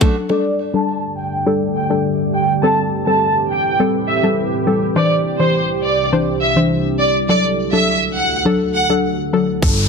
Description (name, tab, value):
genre	dancehall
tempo	103 BPM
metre	4/4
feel	straight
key	G major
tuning	A4 = 440 Hz
part	soft round pluck	accompaniment	0.0-9.8 s	E3 to C5	-18 LUFS	left 2 dB	chorus, low-pass filter
part	island pop drum kit	drums	0.0-0.1, 9.6-9.8 s	hi-hat, kick drum	-15 LUFS	equal	none
part	clear studio violin section	melody	0.3-8.9 s	C5 to A5	-18 LUFS	right 1 dB	low-pass filter, ping-pong delay
part	deep dark ambient pad	sustained chords	1.0-9.6 s	C2 to D5	-21 LUFS	right 2 dB	chorus, built-in reverb, sidechain pumping, low-pass filter
part	fat analog bass	bass	9.6-9.9 s	G1	-18 LUFS	equal	none
part	downlifter	sound effects	9.6-9.9 s	none	-19 LUFS	left 2 dB	none
room	light reverb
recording	dense, heavily limited modern master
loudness	-14 LUFS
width	side -5 dB against mid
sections	0.3-9.6 A section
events	filter sweep 0.3-9.6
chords	0.3 Gsus2; 2.6 Am7; 5.0 Cadd9; 7.3 D